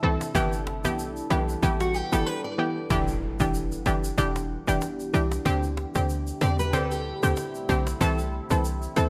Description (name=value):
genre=dancehall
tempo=94 BPM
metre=4/4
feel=swing 56% on 16ths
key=E minor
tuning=A4 = 435 Hz
part: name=analog pluck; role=accompaniment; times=0.0-9.1 s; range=D3 to A4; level=-29 LUFS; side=equal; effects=chorus
part: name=deep dark ambient pad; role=sustained chords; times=0.0-9.1 s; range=C3 to F#5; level=-37 LUFS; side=equal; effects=chorus, built-in reverb, phaser
part: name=short 808-style bass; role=bass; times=0.0-9.1 s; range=E1 to E2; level=-30 LUFS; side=equal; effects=none
part: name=cajon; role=drums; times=0.0-9.1 s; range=none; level=-36 LUFS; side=equal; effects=none
part: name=tube shaker and timbales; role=percussion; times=0.2-9.1 s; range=none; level=-43 LUFS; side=equal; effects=none
part: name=fingerpicked steel-string acoustic guitar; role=arpeggios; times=1.8-7.8 s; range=F#4 to D5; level=-34 LUFS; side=equal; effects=analog chorus, digital delay
part: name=impact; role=sound effects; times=2.9-5.5 s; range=none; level=-38 LUFS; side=equal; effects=none
room=moderate plate reverb, RT60 1.4 s, studio ambience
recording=bright 1980s-style digital production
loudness=-26 LUFS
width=mono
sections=0.0-2.9 A section; 2.9-9.1 B section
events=break 2.3-2.9; impact 2.9-5.5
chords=0.3 G6; 2.9 Em7; 5.5 D7sus4; 8.0 C6